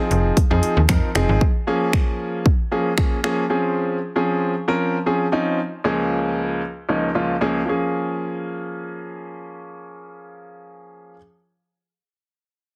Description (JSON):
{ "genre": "dance-pop", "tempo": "115 BPM", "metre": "4/4", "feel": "straight", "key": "Bb minor", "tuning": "A4 = 441 Hz", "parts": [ { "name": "clear baby grand piano", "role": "accompaniment", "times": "0.0-11.2 s", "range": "Db2 to Bb4", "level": "-24 LUFS", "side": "equal", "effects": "sidechain pumping" }, { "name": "slap-like FM bass", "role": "bass", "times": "0.1-1.4 s", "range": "F1 to F2", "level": "-21 LUFS", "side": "equal", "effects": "sidechain pumping" }, { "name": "house drum kit", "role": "drums", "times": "0.1-3.4 s", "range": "finger snaps, hi-hat, kick drum", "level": "-21 LUFS", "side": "equal", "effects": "none" } ], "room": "light reverb, digital ambience", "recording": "heavily compressed radio sound, multiband compression", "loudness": "-21 LUFS", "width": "mono", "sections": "0.0-7.7 A section; 7.7-11.8 B section", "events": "none", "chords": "0.0 Fm7; 1.4 Bbm7; 3.5 Dbmaj7; 5.6 Bbm7/Db; 7.7 Bbm7", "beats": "0.37 0.89 | 1.41 1.93 2.46 2.98 | 3.50 4.02 4.54 5.06 | 5.58 6.11 6.63 7.15 | 7.67 8.19 8.71 9.24 | 9.76 10.28 10.80" }